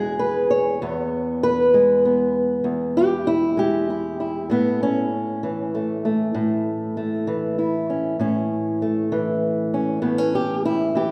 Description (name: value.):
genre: acoustic country blues, solo or duo.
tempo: 65 BPM (dotted quarters).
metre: 12/8.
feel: straight.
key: unclear.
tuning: A4 = 440 Hz.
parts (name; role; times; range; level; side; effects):
fingerpicked old ladder-braced acoustic guitar; solo; 0.0-11.1 s; E2 to C#5; -22 LUFS; equal; none.
room: wet recital hall reverb, RT60 1.7 s.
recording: recorded in a church or concert hall.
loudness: -22 LUFS.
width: mono.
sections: 0.0-11.1 A section.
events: none.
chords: 0.0 E; 4.5 A.